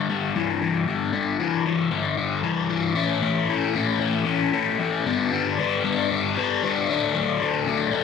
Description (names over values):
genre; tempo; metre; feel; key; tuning
rock; 115 BPM; 4/4; straight; A mixolydian; A4 = 444 Hz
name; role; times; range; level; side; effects
crunchy overdriven guitar; solo; 0.0-8.0 s; G2 to E4; -21 LUFS; left 6 dB; phaser, slapback echo
room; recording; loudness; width
wet echo chamber reverb, RT60 1.7 s; none; -21 LUFS; side -6 dB against mid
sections
0.0-3.0 A section; 3.0-8.0 B section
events
none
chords
0.0 G5; 3.0 A; 5.0 G; 6.9 D